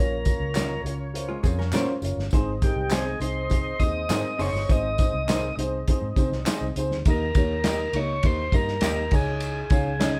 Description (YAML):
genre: uptempo 1960s-style soul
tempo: 102 BPM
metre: 4/4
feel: straight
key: Eb mixolydian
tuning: A4 = 443 Hz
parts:
  - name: tonewheel organ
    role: melody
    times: 0.0-10.2 s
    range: G4 to Eb5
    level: -31 LUFS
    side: equal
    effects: slow rotary speaker
  - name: warm horn section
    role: second line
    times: 0.0-6.7 s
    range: F4 to Eb5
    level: -40 LUFS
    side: equal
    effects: none
  - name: dark upright piano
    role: accompaniment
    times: 0.0-10.2 s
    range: Ab2 to F5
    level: -33 LUFS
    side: equal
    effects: none
  - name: vintage muted fingered electric bass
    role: bass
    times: 0.0-10.2 s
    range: Gb1 to C3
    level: -32 LUFS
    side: equal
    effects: none
  - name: warm soul drum kit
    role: drums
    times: 0.3-10.1 s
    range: crash cymbal, hi-hat, kick drum, ride cymbal, snare drum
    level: -27 LUFS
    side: equal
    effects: none
  - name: tambourine and handclaps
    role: percussion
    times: 0.3-10.2 s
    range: none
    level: -40 LUFS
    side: equal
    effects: none
  - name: electric guitar through a small old amp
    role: stabs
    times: 0.6-10.1 s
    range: C4 to Eb5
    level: -34 LUFS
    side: equal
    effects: none
  - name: hollow-body jazz guitar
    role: riff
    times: 1.3-2.3 s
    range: Ab3 to Bb4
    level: -37 LUFS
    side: equal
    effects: none
  - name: vibraphone with medium hard mallets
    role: second line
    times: 7.1-10.2 s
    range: Ab5 to Db6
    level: -40 LUFS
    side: equal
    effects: none
room: light reverb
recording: band playing live in one room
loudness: -25 LUFS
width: mono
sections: 0.0-7.1 A section; 7.1-10.2 B section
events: none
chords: 0.0 Bbm; 2.3 Ab; 7.1 Eb; 9.1 Dbsus2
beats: 0.56 1.15 1.74 | 2.33 2.92 3.52 4.11 | 4.70 5.29 5.88 6.47 | 7.06 7.65 8.24 8.83 | 9.42 10.01